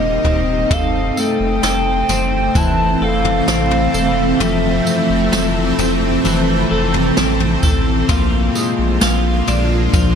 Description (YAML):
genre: dream pop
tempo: 65 BPM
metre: 4/4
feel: straight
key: F major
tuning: A4 = 440 Hz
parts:
  - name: hollow clarinet-like synth lead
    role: melody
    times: 0.0-5.7 s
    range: Eb5 to A5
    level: -22 LUFS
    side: equal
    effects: chorus, ping-pong delay
  - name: shimmering ambient pad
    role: sustained chords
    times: 0.0-10.2 s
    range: C3 to G4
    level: -19 LUFS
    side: right 2 dB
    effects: chorus, built-in reverb
  - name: twelve-string electric guitar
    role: arpeggios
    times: 0.0-10.2 s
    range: F2 to A4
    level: -19 LUFS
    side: left 4 dB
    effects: lush chorus, ping-pong delay
  - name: saturated sub bass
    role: bass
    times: 0.0-10.2 s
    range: Eb1 to Bb1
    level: -20 LUFS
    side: equal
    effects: none
  - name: jazz brush drum kit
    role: drums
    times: 0.2-10.2 s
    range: kick drum, snare drum, tambourine, toms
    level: -20 LUFS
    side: equal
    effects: none
room: light reverb, small room ambience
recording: none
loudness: -13 LUFS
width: side -7 dB against mid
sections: 0.7-10.2 A section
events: none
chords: 0.0 Eb6; 0.7 Fmaj7; 8.1 Bb7